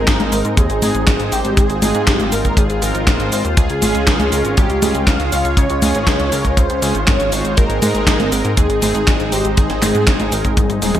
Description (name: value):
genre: italo disco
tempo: 120 BPM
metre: 4/4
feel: straight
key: Ab major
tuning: A4 = 440 Hz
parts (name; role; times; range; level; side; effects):
- wide unison lead; melody; 0.0-11.0 s; F4 to F5; -21 LUFS; equal; ensemble chorus, digital delay
- lush unison pad; sustained chords; 0.0-11.0 s; Ab3 to F4; -23 LUFS; equal; chorus
- analog synth brass; stabs; 0.0-11.0 s; Ab3 to Db5; -24 LUFS; right 2 dB; chorus
- chorused synth bass; bass; 0.0-11.0 s; Eb1 to Ab2; -21 LUFS; equal; none
- gated 80s digital drum machine; drums; 0.1-11.0 s; cabasa, congas, handclaps, hi-hat, snare drum, toms; -19 LUFS; left 1 dB; gated reverb, gated reverb snare, overdrive
- kick drum; drums; 0.1-10.7 s; none; -15 LUFS; equal; none
room: digital ambience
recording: none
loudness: -13 LUFS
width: side -11 dB against mid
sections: 0.0-11.0 A section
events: drum fill 10.6-11.0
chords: 0.0 Ab; 3.6 Db; 7.6 Ab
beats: 0.07 0.57 1.07 | 1.57 2.07 2.57 3.07 | 3.57 4.07 4.57 5.07 | 5.57 6.07 6.57 7.07 | 7.57 8.07 8.57 9.07 | 9.57 10.07 10.57